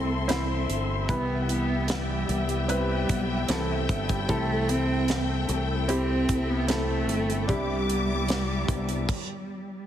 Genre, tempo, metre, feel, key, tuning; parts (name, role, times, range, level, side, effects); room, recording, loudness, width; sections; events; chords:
pop ballad; 75 BPM; 4/4; straight; A4 = 440 Hz
dark cello; melody; 0.0-9.9 s; E3 to C4; -30 LUFS; right 2 dB
clear concert grand piano; accompaniment; 0.0-9.1 s; C3 to C5; -31 LUFS; equal
warm studio string section; sustained chords; 0.0-9.1 s; G4 to D6; -34 LUFS; left 2 dB
fingerpicked steel-string acoustic guitar; arpeggios; 0.0-9.1 s; C3 to E4; -35 LUFS; left 7 dB
fingered electric bass; bass; 0.0-9.1 s; G1 to C2; -30 LUFS; equal
modern studio drum kit; drums; 0.3-9.3 s; crash cymbal, hi-hat, kick drum, snare drum; -31 LUFS; right 1 dB
moderate concert hall reverb, RT60 2.3 s; heavily compressed radio sound, multiband compression; -24 LUFS; side -10 dB against mid
0.0-9.9 A section
stop 9.1-9.9
0.0 Am/C; 1.1 Cmaj7; 4.3 Am/C; 7.5 Em7/C